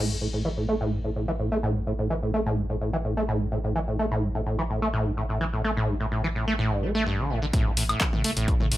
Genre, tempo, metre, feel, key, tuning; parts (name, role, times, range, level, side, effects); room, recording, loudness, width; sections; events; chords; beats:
acid house; 127 BPM; 4/4; straight; A4 = 440 Hz
acid bass, saw; riff; 0.0-8.8 s; G2 to A3; -26 LUFS; equal; overdrive, lush chorus, sidechain pumping, tape echo
saturated sub bass; bass; 0.0-8.8 s; A1; -32 LUFS; equal; tube saturation, sidechain pumping
electronic kick drum; drums; 7.5-8.6 s; -25 LUFS; equal
punchy analog drum machine; drums; 7.5-8.8 s; handclaps, hi-hat, toms, woodblock; -28 LUFS; left 1 dB
moderate studio reverb, RT60 0.6 s; -24 LUFS; side -15 dB against mid
0.0-7.5 A section; 7.5-8.8 B section
filter sweep on acid bass 0.0-7.5; drop 7.5-8.8
0.0 A5
0.45 0.92 1.39 | 1.87 2.34 2.81 3.28 | 3.75 4.23 4.70 5.17 | 5.64 6.12 6.59 7.06 | 7.54 8.01 8.48